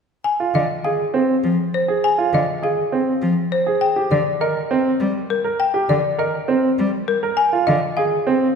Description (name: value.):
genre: classical, minimalist pattern music.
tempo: 101 BPM.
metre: 3/4.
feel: straight.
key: F dorian.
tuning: A4 = 441 Hz.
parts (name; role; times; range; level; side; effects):
folk marimba with hard mallets; melody; 0.2-8.2 s; Bb4 to Ab5; -21 LUFS; left 4 dB; none.
clear grand piano; arpeggios; 0.4-8.5 s; C4 to Bb4; -20 LUFS; right 3 dB; none.
rich cello; accompaniment; 0.5-7.8 s; D3 to G3; -23 LUFS; equal; none.
room: wet scoring stage reverb, RT60 1.9 s.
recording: heard from further back in the room.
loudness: -17 LUFS.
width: side -6 dB against mid.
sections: 0.2-8.6 A section.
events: none.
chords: 0.2 Fm; 3.8 Ebmaj7 (rootless); 7.4 Fm.